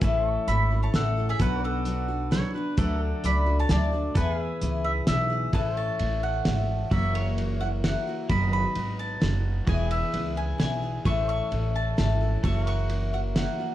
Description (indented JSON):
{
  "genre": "honky-tonk and classic country",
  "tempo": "130 BPM",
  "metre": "3/4",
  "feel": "straight",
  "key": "A lydian from 5.5 s",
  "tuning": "A4 = 442 Hz",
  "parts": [
    { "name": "picked steel-string acoustic guitar", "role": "accompaniment", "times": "0.0-13.7 s", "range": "F#2 to A4", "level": "-30 LUFS", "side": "left 3 dB", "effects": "none" },
    { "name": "pedal steel guitar", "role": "sustained chords", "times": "0.0-13.7 s", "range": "F#4 to F#5", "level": "-38 LUFS", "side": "right 1 dB", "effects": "none" },
    { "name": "upright bass", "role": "bass", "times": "0.0-13.5 s", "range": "E1 to E2", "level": "-27 LUFS", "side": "equal", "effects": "none" },
    { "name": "cloth-damped thuddy drum kit", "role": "drums", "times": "0.0-13.5 s", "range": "hi-hat, kick drum, ride cymbal, snare drum", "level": "-29 LUFS", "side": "equal", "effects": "none" },
    { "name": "mandolin", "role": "melody", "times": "0.5-13.7 s", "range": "G#4 to C#6", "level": "-31 LUFS", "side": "right 2 dB", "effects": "none" },
    { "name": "pedal steel guitar", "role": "second line", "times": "2.3-3.0 s", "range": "A4 to C#5", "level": "-36 LUFS", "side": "right 3 dB", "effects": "none" }
  ],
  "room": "light reverb",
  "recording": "dark, warm production",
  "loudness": "-23 LUFS",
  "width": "side -13 dB against mid",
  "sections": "0.0-5.5 A section; 5.5-13.7 B section",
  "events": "none",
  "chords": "0.0 A; 1.4 Bm; 2.8 D; 4.2 E; 5.5 A; 6.9 F#7; 8.3 B/F#; 9.7 E; 11.1 A; 12.4 F#7"
}